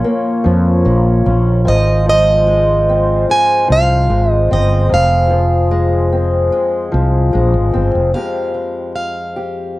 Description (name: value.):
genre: acoustic folk duo or small band.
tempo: 74 BPM.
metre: 4/4.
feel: straight.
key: F minor.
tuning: A4 = 439 Hz.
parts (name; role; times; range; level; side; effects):
fingerpicked old ladder-braced acoustic guitar; accompaniment; 0.0-9.8 s; F2 to G4; -17 LUFS; left 3 dB; cassette tape.
mellow accordion; sustained chords; 0.0-8.1 s; F3 to Db5; -24 LUFS; equal; cassette tape.
mellow fretless electric bass; bass; 0.5-8.1 s; F1 to F2; -14 LUFS; equal; none.
picked plugged-in steel-string acoustic guitar; melody; 1.7-9.8 s; Eb5 to Ab5; -16 LUFS; right 2 dB; cassette tape.
room: light reverb.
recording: home recording on cassette.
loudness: -11 LUFS.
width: side -18 dB against mid.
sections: 0.0-8.1 A section; 8.1-9.8 B section.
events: none.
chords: 0.0 Bbm; 1.7 Fm/Ab; 4.9 Fm; 8.1 Fmadd9.